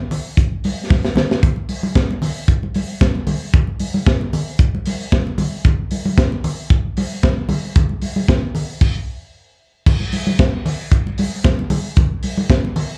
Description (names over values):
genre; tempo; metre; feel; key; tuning
disco; 114 BPM; 4/4; straight; none; none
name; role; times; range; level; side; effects
tight funk drum kit; drums; 0.1-12.9 s; crash cymbal, hi-hat, kick drum, snare drum; -19 LUFS; equal; none
congas; percussion; 0.1-12.9 s; none; -25 LUFS; equal; slapback echo
room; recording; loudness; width
light reverb; live gig heard through the venue's PA, club reverb; -18 LUFS; mono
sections
0.0-9.9 A section; 9.9-13.0 B section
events
drum fill 0.9-1.4; stop 8.8-9.9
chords
none